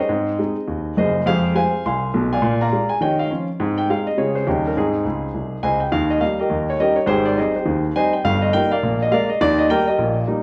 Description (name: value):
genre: jazz, stride piano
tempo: 206 BPM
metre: 4/4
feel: swing 60% on 8ths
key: Ab major, Eb major from 5.9 s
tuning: A4 = 436 Hz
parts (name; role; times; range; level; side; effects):
- warm baby grand piano; solo; 0.0-10.4 s; Gb1 to C6; -20 LUFS; equal; none
room: wet large studio reverb, RT60 0.8 s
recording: band playing live in one room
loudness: -20 LUFS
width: mono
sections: 0.0-5.9 A section; 5.9-10.4 B section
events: grand piano fill 5.0-5.9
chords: 0.1 Ab; 1.3 Fm; 2.4 Bb7; 3.0 Eb9; 3.6 Ab; 4.2 Dbmaj7; 4.5 Eb7; 4.8 Ab; 5.9 Eb; 6.5 Eb7; 7.1 Abmaj7; 8.2 Eb/G; 8.8 Bb7; 9.4 Eb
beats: | 0.10 0.39 0.68 0.97 | 1.26 1.55 1.84 2.13 | 2.43 2.72 3.01 3.30 | 3.59 3.88 4.17 4.46 | 4.75 5.05 5.34 5.63 | 5.92 6.21 6.50 6.79 | 7.08 7.37 7.66 7.95 | 8.24 8.53 8.81 9.11 | 9.39 9.68 9.97 10.26